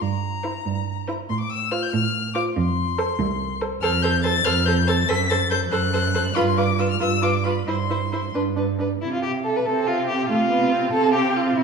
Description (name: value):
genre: quick classical-period movement for string quartet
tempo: 94 BPM (dotted quarters)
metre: 6/8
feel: rubato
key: F major, C major from 3.8 s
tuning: A4 = 440 Hz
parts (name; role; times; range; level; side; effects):
- warm violin; melody; 0.0-11.6 s; E5 to B6; -26 LUFS; left 7 dB; none
- warm cello; bass; 0.0-11.6 s; C2 to C3; -24 LUFS; right 4 dB; none
- rich violin; second line; 0.4-11.6 s; E4 to C5; -25 LUFS; left 1 dB; none
- warm viola; accompaniment; 0.4-11.6 s; A3 to A4; -26 LUFS; right 2 dB; none
room: wet recital hall reverb, RT60 1.4 s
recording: studio ambience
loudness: -20 LUFS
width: side -5 dB against mid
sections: 0.0-9.0 A section; 9.0-11.6 B section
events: none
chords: 0.0 C7/G; 1.3 F/A; 2.6 F; 5.1 F#dim; 6.4 G7; 7.7 C/G; 8.3 G; 9.0 C; 10.3 F5/C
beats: | 0.01 0.65 | 1.29 1.93 | 2.56 3.19 | 3.82 4.45 | 5.08 5.72 | 6.36 7.01 | 7.67 8.34 | 9.01 9.66 | 10.30 10.93 | 11.56